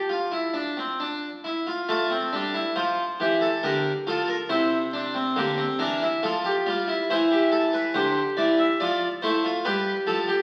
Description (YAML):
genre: classical, baroque-style 3-part fugue for harpsichord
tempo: 69 BPM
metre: 3/4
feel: straight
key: F major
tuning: A4 = 440 Hz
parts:
  - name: harpsichord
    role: solo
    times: 0.0-10.4 s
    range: C3 to E5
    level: -25 LUFS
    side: equal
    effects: none
room: wet recital hall reverb, RT60 1.4 s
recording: very old 78 rpm record, vinyl crackle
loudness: -25 LUFS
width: mono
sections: 0.0-1.9 A section; 1.9-10.4 B section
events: none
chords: 0.0 F5; 1.9 F; 3.6 Gm7/D; 4.5 C7; 6.2 F; 7.1 C/E; 8.8 Dm7/F; 9.7 G7